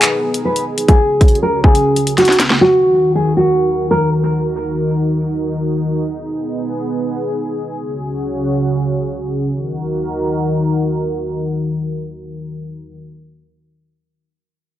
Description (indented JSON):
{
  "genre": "hip hop, drill",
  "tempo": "free time",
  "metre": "none",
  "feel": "none",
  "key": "Eb minor",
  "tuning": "A4 = 441 Hz",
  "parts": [
    { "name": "nylon-string guitar", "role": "melody", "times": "0.0-4.1 s", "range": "Gb4 to B4", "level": "-14 LUFS", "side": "equal", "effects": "low-pass filter, tape echo" },
    { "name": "dark analog pad", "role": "sustained chords", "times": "0.0-13.0 s", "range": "Db3 to Bb4", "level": "-18 LUFS", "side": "equal", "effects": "chorus, low-pass filter" },
    { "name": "drill drum kit", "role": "drums", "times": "0.0-2.6 s", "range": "handclaps, hi-hat, kick drum, snare drum", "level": "-12 LUFS", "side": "equal", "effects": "none" }
  ],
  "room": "little or no reverb",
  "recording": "dry, gritty hardware recording, cassette tape",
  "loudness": "-14 LUFS",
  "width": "side -12 dB against mid",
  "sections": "0.0-9.5 A section; 9.5-13.0 B section",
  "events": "filter sweep 0.0-9.5; drum fill 2.2-2.6",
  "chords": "0.0 B6; 0.9 Dbsus4; 2.6 Ebm; 6.1 B6; 7.8 Dbsus4; 9.5 Ebm"
}